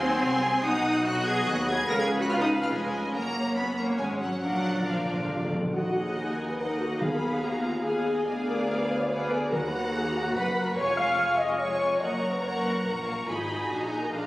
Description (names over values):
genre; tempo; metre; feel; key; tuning
quick classical-period movement for symphony orchestra; 143 BPM; 3/4; straight; Eb minor; A4 = 440 Hz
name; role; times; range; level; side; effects
rich studio violin section; melody; 0.0-14.3 s; D5 to Bb6; -35 LUFS; equal; none
dark clarinet; second line; 0.0-5.5 s; B3 to D4; -34 LUFS; equal; none
mellow flute section; second line; 0.0-5.5 s; F5 to Gb5; -38 LUFS; equal; none
rich studio violin section; second line; 0.0-14.3 s; Eb4 to Db6; -32 LUFS; left 1 dB; none
rich studio viola section; accompaniment; 0.0-14.3 s; F3 to Bb4; -32 LUFS; equal; none
mellow French horn section; sustained chords; 0.0-14.3 s; F3 to F5; -30 LUFS; left 1 dB; none
rich studio cello section; bass; 0.0-14.3 s; D2 to Bb4; -34 LUFS; equal; none
rich studio double bass section; bass; 0.0-14.3 s; F1 to Eb2; -36 LUFS; right 1 dB; none
timpani; percussion; 4.4-10.1 s; Bb2 to Eb3; -34 LUFS; equal; none
room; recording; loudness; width
wet scoring stage reverb, RT60 1.8 s; recorded on a phone in the room, studio reverb, compression; -25 LUFS; side -18 dB against mid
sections
0.0-5.7 A section; 5.7-14.3 B section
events
timpani fill 4.4-5.7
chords
0.0 Cdim/Eb; 0.6 B; 1.9 Db; 3.1 Gb; 4.4 Bb; 5.7 Ebm; 7.0 Fm7b5/Eb; 8.3 Ddim7; 9.5 Ebm; 10.8 Db/F; 12.0 Gb; 13.3 Abm; 13.7 Ebm/Bb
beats
0.23 | 0.64 1.06 1.48 | 1.89 2.31 2.73 | 3.15 3.57 3.99 | 4.43 4.87 5.30 | 5.74 6.17 6.59 | 7.01 7.43 7.85 | 8.27 8.69 9.11 | 9.53 9.94 10.35 | 10.77 11.18 11.60 | 12.02 12.43 12.85 | 13.27 13.70 14.12